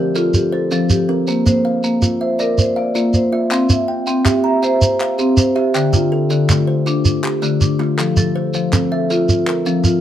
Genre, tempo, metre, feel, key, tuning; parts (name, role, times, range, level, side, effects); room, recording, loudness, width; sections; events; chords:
southern african traditional, mbira-style interlocking cycle; 107 BPM (dotted quarters); 12/8; straight; C mixolydian; A4 = 440 Hz
kalimba; arpeggios; 0.0-10.0 s; D3 to Bb5; -19 LUFS; right 4 dB
marimba with medium mallets; arpeggios; 0.0-10.0 s; D3 to E5; -17 LUFS; left 3 dB
shekere; percussion; 0.2-10.0 s; -17 LUFS; right 2 dB
group handclap; percussion; 3.5-9.9 s; -24 LUFS; left 2 dB
moderate studio reverb, RT60 0.6 s; dark, warm production; -14 LUFS; side -11 dB against mid
0.0-3.5 A section; 3.5-10.0 B section
0.0 F; 1.3 Bb; 3.5 C; 5.7 Dm; 8.0 F